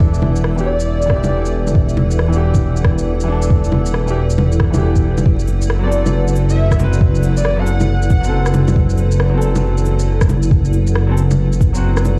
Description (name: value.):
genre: future garage.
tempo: 137 BPM.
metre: 4/4.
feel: swing 63% on 16ths.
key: unclear.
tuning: A4 = 436 Hz.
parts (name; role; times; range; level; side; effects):
bright upright piano; accompaniment; 0.0-12.0 s; E3 to B4; -26 LUFS; equal; sidechain pumping, tape echo.
granular cloud pad; sustained chords; 0.0-12.2 s; E4 to F#5; -27 LUFS; equal; built-in reverb, sidechain pumping.
dark detuned saw bass; bass; 0.0-12.2 s; E1 to F#1; -18 LUFS; equal; sidechain pumping.
electronic kick drum; drums; 0.0-11.7 s; none; -16 LUFS; equal; small room ambience.
backwards swelling texture; texture; 0.0-5.3 s; E5; -40 LUFS; equal; none.
electronic shaker, bongos, rim click and cabasa; drums; 0.1-12.2 s; none; -24 LUFS; equal; small room ambience.
airy dreamy lead; melody; 0.7-1.5, 5.8-8.5 s; D5 to F#5; -26 LUFS; equal; chorus, tape echo.
room: digital ambience.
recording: played on a big sound system in a bare room, large studio reverb, vinyl crackle.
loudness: -15 LUFS.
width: mono.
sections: 0.0-5.3 A section; 5.3-12.2 B section.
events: none.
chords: 0.0 Em7; 5.3 F#dim.